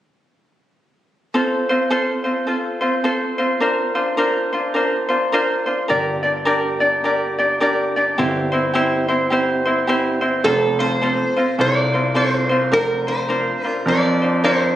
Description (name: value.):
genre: Hawaiian.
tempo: 105 BPM.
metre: 4/4.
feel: swing 61% on 8ths.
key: F major.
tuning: A4 = 435 Hz.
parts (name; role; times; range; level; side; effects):
ukulele; accompaniment; 1.3-14.8 s; C4 to D5; -18 LUFS; equal; none.
warm grand piano; bass; 5.9-14.8 s; F1 to F2; -24 LUFS; right 1 dB; none.
metal-body resonator slide guitar; melody; 10.4-14.8 s; A4 to D5; -19 LUFS; right 1 dB; none.
room: moderate concert hall reverb, RT60 2.0 s.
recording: recorded on a phone in the room, studio reverb, compression.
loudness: -16 LUFS.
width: side -12 dB against mid.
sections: 1.3-10.4 A section; 10.4-14.8 B section.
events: none.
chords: 1.3 F; 3.6 Bbadd9; 5.9 Gm; 8.2 C/G; 10.4 F; 12.7 Bbadd9/F.